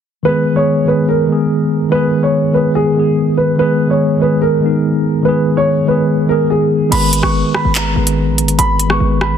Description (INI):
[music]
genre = hip hop, drill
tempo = 144 BPM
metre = 4/4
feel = half-time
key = G# minor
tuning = A4 = 439 Hz
[part]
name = dark concert grand piano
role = melody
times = 0.2-9.4 s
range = G#4 to C#6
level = -16 LUFS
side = right 1 dB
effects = low-pass filter, ping-pong delay
[part]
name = mellow tine electric piano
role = accompaniment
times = 0.2-9.4 s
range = D#3 to B4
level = -14 LUFS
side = left 1 dB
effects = medium stereo tremolo, low-pass filter
[part]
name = hard-hitting 808-style bass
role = bass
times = 6.9-9.4 s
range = G#1 to B1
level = -17 LUFS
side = equal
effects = none
[part]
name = drill drum kit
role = drums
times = 6.9-9.3 s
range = crash cymbal, handclaps, hi-hat, rim click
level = -18 LUFS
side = equal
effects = soft clipping on snare
[sound]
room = light reverb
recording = dense, heavily limited modern master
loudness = -11 LUFS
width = side -8 dB against mid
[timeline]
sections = 0.3-6.9 A section; 6.9-9.4 B section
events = none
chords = 0.3 G#m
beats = | 0.25 0.67 1.09 1.50 | 1.92 2.34 2.75 3.17 | 3.59 4.00 4.42 4.84 | 5.25 5.67 6.09 6.50 | 6.92 7.34 7.75 8.17 | 8.59 9.00